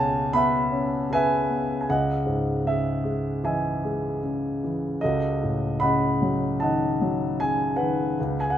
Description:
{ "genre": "classical, lyrical solo piano", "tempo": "76 BPM", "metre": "4/4", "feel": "rubato", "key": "unclear", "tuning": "A4 = 441 Hz", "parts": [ { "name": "warm concert grand piano", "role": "solo", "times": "0.0-8.6 s", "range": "C#2 to B5", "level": "-22 LUFS", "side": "equal", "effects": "none" } ], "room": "light reverb", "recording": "minimal, uncompressed stereo recording", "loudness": "-22 LUFS", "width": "side -10 dB against mid", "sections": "0.0-8.6 A section", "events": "none", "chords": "0.0 F#7sus4/C#; 1.9 C#madd9; 5.0 B7/C#", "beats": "0.33 1.10 | 1.87 2.65 3.42 4.21 | 5.01 5.81 6.60 7.39 | 8.18" }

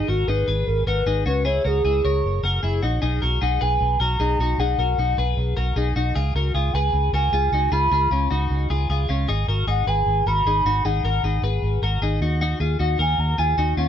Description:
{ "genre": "jangly indie pop", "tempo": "153 BPM", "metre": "4/4", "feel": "straight", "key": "unclear", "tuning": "A4 = 436 Hz", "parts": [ { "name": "mellow hollow wooden-headed alto flute", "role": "melody", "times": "0.0-13.9 s", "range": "F#4 to B5", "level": "-24 LUFS", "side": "equal", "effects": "digital delay" }, { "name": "twelve-string electric guitar", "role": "arpeggios", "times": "0.0-13.9 s", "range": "C#4 to C#5", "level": "-26 LUFS", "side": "left 4 dB", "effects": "wide subtle chorus" }, { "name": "vintage muted fingered electric bass", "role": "bass", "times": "0.1-13.9 s", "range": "F#1 to D#2", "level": "-22 LUFS", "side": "right 1 dB", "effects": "none" } ], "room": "light reverb, small room ambience", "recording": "none", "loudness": "-19 LUFS", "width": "side -9 dB against mid", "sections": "0.0-3.0 A section; 3.0-13.9 B section", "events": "none", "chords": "0.0 G#madd9; 1.3 C#m; 2.2 F#7; 3.0 Bmaj7; 6.2 C#7; 9.3 G#m7; 12.2 D#m", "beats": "0.28 0.67 1.06 | 1.45 1.84 2.23 2.63 | 3.02 3.41 3.80 4.19 | 4.58 4.98 5.37 5.76 | 6.15 6.54 6.93 7.32 | 7.71 8.11 8.50 8.89 | 9.28 9.67 10.06 10.45 | 10.84 11.23 11.62 12.01 | 12.40 12.79 13.19 13.58" }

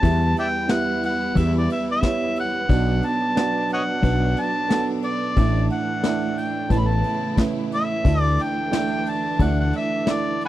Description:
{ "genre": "acoustic folk-pop ballad", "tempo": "90 BPM", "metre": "4/4", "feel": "straight", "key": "D major", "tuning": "A4 = 440 Hz", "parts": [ { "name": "mellow harmonica", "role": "melody", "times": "0.0-10.5 s", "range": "C#5 to B5", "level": "-25 LUFS", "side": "left 1 dB", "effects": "none" }, { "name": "warm upright piano", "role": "accompaniment", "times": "0.0-10.5 s", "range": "A1 to E5", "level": "-25 LUFS", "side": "right 5 dB", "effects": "none" }, { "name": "bright studio string section", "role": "sustained chords", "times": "0.0-10.5 s", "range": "C#3 to E4", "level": "-31 LUFS", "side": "left 1 dB", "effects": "none" }, { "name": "fretless electric bass", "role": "bass", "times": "0.0-9.7 s", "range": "A1 to E2", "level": "-20 LUFS", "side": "left 1 dB", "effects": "none" }, { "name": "vintage brush drum kit", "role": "drums", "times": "0.0-10.5 s", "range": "kick drum, ride cymbal, snare drum", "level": "-22 LUFS", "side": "left 2 dB", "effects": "none" } ], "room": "small room ambience", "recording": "dry, close 1970s-style studio recording", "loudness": "-19 LUFS", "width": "side -14 dB against mid", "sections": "0.0-10.5 A section", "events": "none", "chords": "0.0 Em; 2.7 Bm; 5.4 Asus4; 6.7 Aadd9; 8.1 Dsus2", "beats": "| 0.02 0.68 1.35 2.02 | 2.69 3.35 4.02 4.69 | 5.36 6.03 6.70 7.37 | 8.05 8.72 9.40 10.07" }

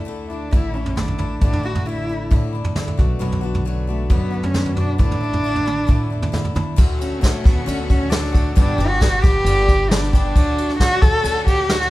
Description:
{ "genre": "indie folk with a building arrangement", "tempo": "134 BPM", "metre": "4/4", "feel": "straight", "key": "D major", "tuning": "A4 = 440 Hz", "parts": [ { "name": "fingerpicked plugged-in steel-string acoustic guitar", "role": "accompaniment", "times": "0.0-8.6 s", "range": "D2 to A4", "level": "-31 LUFS", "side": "left 2 dB", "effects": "none" }, { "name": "picked swing-style acoustic guitar", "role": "accompaniment", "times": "0.0-11.9 s", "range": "G2 to G4", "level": "-30 LUFS", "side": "left 6 dB", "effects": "none" }, { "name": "upright bass", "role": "bass", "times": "0.0-11.9 s", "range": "G1 to A2", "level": "-23 LUFS", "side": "equal", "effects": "none" }, { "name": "dark cello", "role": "melody", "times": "0.3-11.9 s", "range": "A3 to A4", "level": "-22 LUFS", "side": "equal", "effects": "none" }, { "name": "vintage brush drum kit", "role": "drums", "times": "0.5-11.9 s", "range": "kick drum, ride cymbal, snare drum, toms", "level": "-18 LUFS", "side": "equal", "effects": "none" }, { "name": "warm chamber string section", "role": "sustained chords", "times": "6.8-11.9 s", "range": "A4 to D6", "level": "-35 LUFS", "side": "left 3 dB", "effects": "none" } ], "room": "light reverb", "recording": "none", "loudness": "-16 LUFS", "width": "side -17 dB against mid", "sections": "0.0-6.8 A section; 6.8-11.9 B section", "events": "none", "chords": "0.0 Dsus2; 1.4 Asus4; 3.0 Bm7; 5.0 Asus4; 6.8 Dmaj7; 8.6 G; 10.3 Dmaj7", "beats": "0.08 0.53 0.97 | 1.42 1.87 2.31 2.76 | 3.21 3.65 4.10 4.55 | 4.99 5.44 5.89 6.33 | 6.78 7.22 7.67 8.12 | 8.56 9.01 9.45 9.90 | 10.34 10.79 11.23 11.68" }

